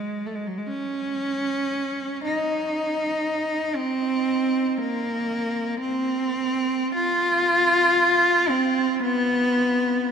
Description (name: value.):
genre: classical, free, expressive piece for unaccompanied cello.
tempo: 46-60 BPM.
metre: 3/4.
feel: rubato.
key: unclear.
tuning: A4 = 439 Hz.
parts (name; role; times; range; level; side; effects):
rich cello; solo; 0.0-10.1 s; F#3 to F4; -21 LUFS; equal; none.
room: wet cathedral reverb, RT60 6.5 s.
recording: minimal, uncompressed stereo recording.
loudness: -21 LUFS.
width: side -7 dB against mid.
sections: 0.0-10.1 A section.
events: none.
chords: none.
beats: 0.66 1.72 | 2.75 3.77 4.80 | 5.82 6.96 8.00 | 9.01.